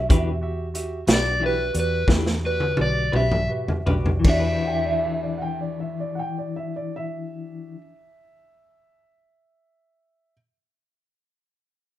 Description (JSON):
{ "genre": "slow blues", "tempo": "52-63 BPM (dotted quarters)", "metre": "12/8", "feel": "straight", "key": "E minor", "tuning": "A4 = 439 Hz", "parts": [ { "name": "overdriven semi-hollow guitar", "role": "melody", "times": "0.0-7.8 s", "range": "B4 to E5", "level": "-25 LUFS", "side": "equal", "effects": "spring reverb" }, { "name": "clear concert grand piano", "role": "accompaniment", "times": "0.0-7.8 s", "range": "F#4 to E5", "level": "-35 LUFS", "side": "right 2 dB", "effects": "plate reverb" }, { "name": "vintage muted fingered electric bass", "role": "bass", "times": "0.0-7.8 s", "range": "B1 to E2", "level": "-27 LUFS", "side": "equal", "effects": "none" }, { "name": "semi-hollow electric guitar", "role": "accompaniment", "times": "0.1-8.0 s", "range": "E3 to B4", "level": "-28 LUFS", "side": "left 3 dB", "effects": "tremolo, plate reverb" }, { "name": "raw garage drum kit", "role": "drums", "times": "0.1-4.4 s", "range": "crash cymbal, hi-hat, kick drum, snare drum, toms", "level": "-22 LUFS", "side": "equal", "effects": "none" }, { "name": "dark upright piano", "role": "second line", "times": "4.6-10.3 s", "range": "D5 to G5", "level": "-33 LUFS", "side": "right 2 dB", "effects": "none" } ], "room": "moderate small room reverb, RT60 0.5 s", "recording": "rough home demo mix", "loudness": "-21 LUFS", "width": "side -13 dB against mid", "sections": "0.0-4.2 A section; 4.2-8.8 B section", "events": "slowing down 0.0-4.2; drum fill 2.1-4.2", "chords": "0.0 Em7" }